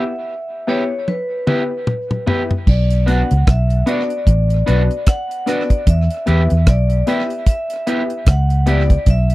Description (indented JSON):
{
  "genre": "roots reggae",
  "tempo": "75 BPM",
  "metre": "4/4",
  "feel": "swing 58% on 16ths",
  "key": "unclear",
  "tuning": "A4 = 440 Hz",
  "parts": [
    { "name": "vibraphone with medium hard mallets", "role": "melody", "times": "0.0-9.3 s", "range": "B4 to F#5", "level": "-23 LUFS", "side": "left 1 dB", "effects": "tape echo" },
    { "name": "electric guitar at the edge of break-up", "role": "accompaniment", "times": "0.0-8.8 s", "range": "B3 to G4", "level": "-25 LUFS", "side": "right 2 dB", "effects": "tape echo" },
    { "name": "dark upright piano", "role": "stabs", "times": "0.0-8.9 s", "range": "B3 to B4", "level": "-22 LUFS", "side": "left 4 dB", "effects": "none" },
    { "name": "deep reggae drum kit", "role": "drums", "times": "1.1-9.3 s", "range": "crash cymbal, hi-hat, kick drum, rim click, toms", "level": "-15 LUFS", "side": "equal", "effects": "none" },
    { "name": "vintage muted fingered electric bass", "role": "bass", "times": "2.7-9.3 s", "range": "A1 to E2", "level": "-14 LUFS", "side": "equal", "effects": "tube saturation" }
  ],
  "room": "little or no reverb",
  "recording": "dry, close 1970s-style studio recording",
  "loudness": "-14 LUFS",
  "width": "side -18 dB against mid",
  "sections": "0.0-2.7 A section; 2.7-9.3 B section",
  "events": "break 0.0-2.7; drum fill 1.1-2.7",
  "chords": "0.0 Em; 2.7 Bm; 5.9 Em",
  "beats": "0.27 1.07 1.87 | 2.67 3.47 4.27 5.07 | 5.87 6.67 7.46 8.26 | 9.06"
}